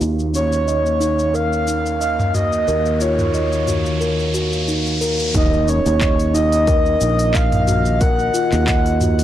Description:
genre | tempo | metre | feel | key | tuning
organic downtempo | 90 BPM | 4/4 | swing 54% on 16ths | Eb minor | A4 = 440 Hz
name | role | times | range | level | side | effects
warbly tape-like pad | sustained chords | 0.0-9.2 s | Eb3 to F5 | -28 LUFS | left 1 dB | chorus, built-in reverb, sidechain pumping
steel tongue drum | arpeggios | 0.0-9.2 s | Db4 to Eb5 | -22 LUFS | right 1 dB | analog delay
fretless electric bass | bass | 0.0-9.2 s | Bb1 to Eb2 | -20 LUFS | equal | transformer saturation, sidechain pumping
afro-pop drum kit | drums | 0.0-9.2 s | handclaps, hi-hat, shaker, toms | -24 LUFS | equal | none
riser and impact | sound effects | 1.7-8.0 s | none | -28 LUFS | equal | none
breathy flute-like synth lead | melody | 0.3-9.2 s | Db5 to Gb5 | -20 LUFS | equal | tremolo, wide subtle chorus, vintage 12-bit sampler grit, analog delay
electronic kick drum | drums | 5.3-8.8 s | none | -19 LUFS | equal | none
room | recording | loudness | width
light reverb | dry, gritty hardware recording, cassette tape | -15 LUFS | side -12 dB against mid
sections
0.0-5.3 A section; 5.3-9.2 B section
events
riser 1.7-5.3; impact 5.3-8.0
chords
0.0 Eb7(no3); 5.3 Ebm

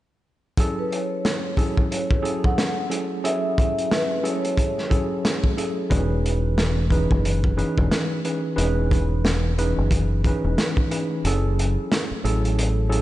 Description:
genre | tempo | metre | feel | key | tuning
hip hop, boom-bap hip-hop | 90 BPM | 4/4 | swing 60% on 16ths | unclear | A4 = 436 Hz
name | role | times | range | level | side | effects
mellow tine electric piano | accompaniment | 0.6-13.0 s | E3 to B4 | -25 LUFS | right 1 dB | medium stereo tremolo, high-pass filter, low-pass filter
crunchy breakbeat drum kit | drums | 0.6-13.0 s | hi-hat, kick drum, snare drum | -23 LUFS | equal | none
vibraphone with soft mallets | melody | 0.8-5.4 s | B4 to F#5 | -28 LUFS | left 1 dB | high-pass filter, low-pass filter, diffuse ambient delay
deep dub fingered electric bass | bass | 5.9-13.0 s | E1 to A1 | -22 LUFS | equal | none
room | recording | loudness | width
moderate lush hall reverb, RT60 2.8 s | dreamy mix soaked in reverb, nothing above 10.3 kHz | -20 LUFS | side -15 dB against mid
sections
0.6-11.2 A section; 11.2-13.0 B section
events
kick muted 11.2-13.0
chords
0.6 F#m7; 5.9 C#m7/E; 11.2 F#m7

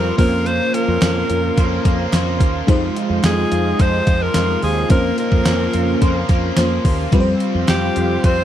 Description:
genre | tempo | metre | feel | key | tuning
1980s-style pop | 108 BPM | 4/4 | straight | unclear | A4 = 439 Hz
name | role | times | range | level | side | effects
edgy alto saxophone | melody | 0.0-8.4 s | G4 to C5 | -21 LUFS | equal | slapback echo
FM electric piano with soft pad layer | accompaniment | 0.0-8.4 s | G3 to C5 | -23 LUFS | left 3 dB | chorus
distorted electric guitar | accompaniment | 0.0-8.4 s | F2 to C4 | -28 LUFS | left 1 dB | overdrive, analog chorus
string machine, cellos | sustained chords | 0.0-8.4 s | Db4 to C6 | -26 LUFS | equal | ensemble chorus
clean electric guitar | riff | 0.0-8.4 s | G3 to C5 | -24 LUFS | right 3 dB | analog chorus, slapback echo
woody fretless electric bass | bass | 0.0-8.4 s | Eb2 to F2 | -21 LUFS | equal | ensemble chorus
gated 80s digital drum machine | drums | 0.2-8.4 s | hi-hat, kick drum, snare drum, tambourine | -17 LUFS | equal | gated reverb, gated reverb snare, overdrive
group handclap | percussion | 1.0-7.8 s | none | -34 LUFS | right 9 dB | none
room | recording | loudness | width
little or no reverb | dry, close 1970s-style studio recording | -14 LUFS | side -11 dB against mid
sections
0.0-8.4 A section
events
none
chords
0.2 Bbmadd9/F; 2.7 Fm7; 4.9 Bbmadd9/F; 7.1 Csus4/F

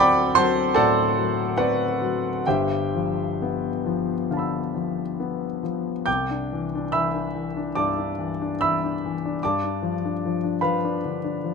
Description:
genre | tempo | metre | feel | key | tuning
classical, impressionist solo piano | 64-77 BPM | 4/4 | rubato | C major | A4 = 440 Hz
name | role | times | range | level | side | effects
clear concert grand piano | solo | 0.0-11.5 s | G1 to G6 | -21 LUFS | left 1 dB | none
room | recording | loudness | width
light reverb | close, detailed microphones | -22 LUFS | side -5 dB against mid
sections
0.0-6.1 A section; 6.1-11.5 B section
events
none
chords
0.0 D7; 2.4 G13; 6.1 Cadd9; 9.4 G9

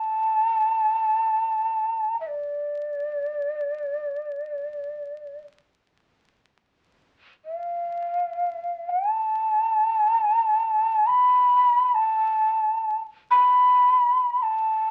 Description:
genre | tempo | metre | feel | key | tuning
japanese traditional, Japanese chamber music | free time | none | none | unclear | A4 = 440 Hz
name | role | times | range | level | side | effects
breathy mellow shakuhachi | solo | 0.0-14.9 s | D5 to B5 | -23 LUFS | equal | none
room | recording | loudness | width
moderate studio reverb, RT60 0.5 s | very old 78 rpm record, vinyl crackle | -23 LUFS | mono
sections
0.0-6.0 A section; 6.0-14.9 A section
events
none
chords
none

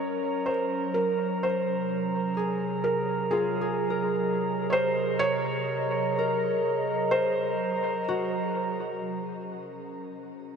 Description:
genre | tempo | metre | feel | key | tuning
ambient | 63 BPM | 4/4 | straight | unclear | A4 = 440 Hz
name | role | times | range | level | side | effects
felt-muted upright piano | melody | 0.0-8.0 s | Ab4 to Db5 | -29 LUFS | right 1 dB | shimmer reverb, tape echo
warbly tape-like pad | sustained chords | 0.0-10.6 s | C3 to F5 | -30 LUFS | right 2 dB | chorus, built-in reverb, shimmer reverb
concert harp | arpeggios | 0.0-10.5 s | F4 to Bb4 | -33 LUFS | left 2 dB | shimmer reverb, tape echo
glass harmonica | texture | 0.0-9.1 s | Bb4 to Bb5 | -33 LUFS | right 1 dB | shimmer reverb
room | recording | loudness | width
wet huge ambient reverb, RT60 7.3 s | none | -25 LUFS | side -6 dB against mid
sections
0.0-9.0 A section; 9.0-10.6 B section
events
filter sweep on ambient pad 9.0-10.6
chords
0.0 Gb; 1.4 Ab7; 9.0 Gbmaj7

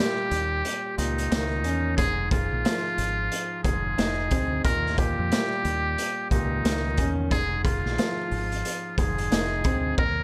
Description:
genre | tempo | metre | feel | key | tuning
hip hop, boom-bap hip-hop | 90 BPM | 4/4 | swing 62% on 16ths | F minor | A4 = 440 Hz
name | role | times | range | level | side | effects
trumpet with metal mute | melody | 0.0-10.2 s | Eb4 to Bb4 | -31 LUFS | equal | high-pass filter, low-pass filter, plate reverb, delay
warm concert grand piano | accompaniment | 0.0-10.0 s | Ab2 to Eb4 | -34 LUFS | equal | cassette tape, high-pass filter, low-pass filter
deep dub fingered electric bass | bass | 0.3-10.2 s | F1 to F2 | -32 LUFS | equal | none
raw garage drum kit | drums | 0.3-10.2 s | hi-hat, kick drum, snare drum | -30 LUFS | equal | none
room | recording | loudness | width
light reverb | none | -26 LUFS | mono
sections
0.0-10.2 A section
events
break 0.0-2.0; hi-hats muted 10.0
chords
0.0 Eb7; 2.0 Fm7; 4.6 Eb7; 7.3 Fm7

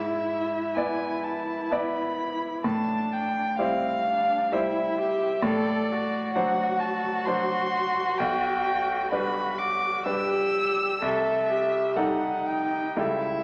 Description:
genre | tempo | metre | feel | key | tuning
classical, slow romantic movement for piano trio | 64 BPM | 3/4 | rubato | G major from 5.4 s | A4 = 440 Hz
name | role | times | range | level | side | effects
muted violin | melody | 0.0-13.4 s | D5 to E6 | -30 LUFS | equal | none
muted cello | second line | 0.0-13.4 s | C4 to A4 | -32 LUFS | equal | none
bright grand piano | accompaniment | 0.0-13.4 s | B1 to D5 | -32 LUFS | equal | none
room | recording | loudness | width
wet recital hall reverb, RT60 1.5 s | lossy compression artefacts | -26 LUFS | mono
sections
0.0-13.4 A section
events
none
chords
0.0 E7/G#; 2.6 Am7; 5.4 D7/A; 8.2 G/B; 11.0 Am7b5/C

